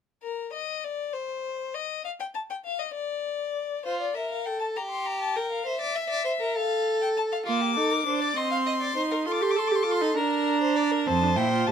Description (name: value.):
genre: classical, baroque-style fugue for string quartet.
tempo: 66 BPM (dotted quarters).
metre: 6/8.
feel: straight.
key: unclear.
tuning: A4 = 440 Hz.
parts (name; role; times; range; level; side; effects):
rich violin; melody; 0.2-11.7 s; Bb4 to D6; -29 LUFS; left 6 dB; none.
rich violin; second line; 3.9-11.7 s; F4 to F5; -28 LUFS; equal; none.
rich viola; accompaniment; 7.5-11.7 s; Bb3 to A4; -26 LUFS; right 6 dB; none.
warm cello; bass; 11.1-11.7 s; F2 to Bb2; -25 LUFS; right 5 dB; none.
room: light reverb.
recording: minimal, uncompressed stereo recording.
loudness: -25 LUFS.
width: side -8 dB against mid.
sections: 0.2-11.7 A section.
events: none.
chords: 0.2 N.C.; 3.9 F; 4.8 Gm; 5.7 C; 6.6 F/A; 7.5 Bb; 8.4 Cm; 9.3 F7; 10.2 Bb/D; 11.1 F.